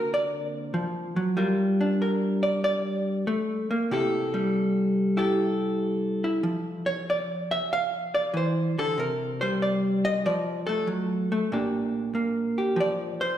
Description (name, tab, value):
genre	solo jazz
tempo	94 BPM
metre	4/4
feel	swing 68% on 8ths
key	F major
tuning	A4 = 438 Hz
part	vintage hollow-body jazz guitar	solo	0.0-13.4 s	Bb2 to F5	-24 LUFS	equal	none
room	wet recital hall reverb, RT60 1.8 s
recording	recorded in a church or concert hall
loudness	-24 LUFS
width	side -11 dB against mid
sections	0.0-11.5 A section; 11.5-13.4 A section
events	hollow-body jazz guitar solo 0.0-13.4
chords	0.0 D7alt; 1.4 Gm11; 3.9 C6; 6.4 Fmaj7; 9.0 C5; 10.2 F; 11.5 Bb6